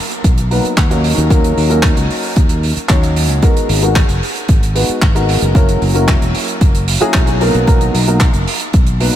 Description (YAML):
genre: nu-disco, nu disco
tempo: 113 BPM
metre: 4/4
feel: straight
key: G# minor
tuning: A4 = 439 Hz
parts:
  - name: damped 70s drum kit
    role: drums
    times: 0.1-9.2 s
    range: handclaps, hi-hat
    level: -20 LUFS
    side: right 2 dB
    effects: studio reverb
  - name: fingered electric bass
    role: bass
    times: 0.2-9.1 s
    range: E1 to D#2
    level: -16 LUFS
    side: equal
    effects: sidechain pumping
  - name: electronic kick drum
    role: drums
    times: 0.2-8.8 s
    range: none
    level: -12 LUFS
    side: equal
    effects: overdrive, studio reverb
  - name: dark grand piano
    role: accompaniment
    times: 0.5-9.2 s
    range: F#3 to C#5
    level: -17 LUFS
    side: left 1 dB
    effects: analog chorus, sidechain pumping, ping-pong delay
room: light reverb, studio reverb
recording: none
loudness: -11 LUFS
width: side -11 dB against mid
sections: 0.0-9.2 A section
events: none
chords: 0.0 Bmaj7; 1.0 D#m7; 3.4 G#m9; 5.6 F#7; 7.4 Bmaj7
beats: 0.24 0.78 | 1.31 1.84 2.37 2.90 | 3.43 3.96 4.49 5.02 | 5.55 6.08 6.62 7.15 | 7.68 8.21 8.74